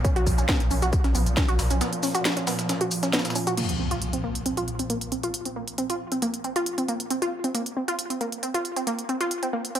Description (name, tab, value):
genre	driving peak-time techno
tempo	136 BPM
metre	4/4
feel	straight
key	Bb minor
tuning	A4 = 439 Hz
part	wide unison pluck	riff	0.0-9.8 s	Bb3 to F#4	-27 LUFS	equal	sidechain pumping, dub echo
part	saturated sub bass	bass	0.0-1.8 s	B1	-25 LUFS	equal	tube saturation, sidechain pumping, low-pass filter
part	swarming drone	drone	0.0-3.6 s	Bb2 to F3	-32 LUFS	right 1 dB	built-in reverb, sidechain pumping
part	breakbeat sampler-style drum kit	drums	0.0-3.5 s	hi-hat, snare drum, tambourine	-34 LUFS	equal	high-pass filter on snare, sidechain pumping on perc, high-pass filter on perc, sidechain pumping on hats, high-pass filter on hats, high-pass filter on room
part	electronic kick drum	drums	0.0-1.5 s	none	-24 LUFS	equal	none
part	techno drum kit	drums	0.0-9.8 s	crash cymbal, hi-hat, shaker, snare drum	-29 LUFS	equal	sidechain pumping on hats, sidechain pumping on perc, sidechain pumping on cymbals
part	impact	sound effects	3.6-5.3 s	none	-33 LUFS	equal	none
room	light reverb, digital ambience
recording	none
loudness	-23 LUFS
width	side -10 dB against mid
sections	0.0-3.6 A section; 3.6-9.8 B section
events	break 1.8-3.6; impact 3.6-5.3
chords	0.0 B5; 3.6 Bb5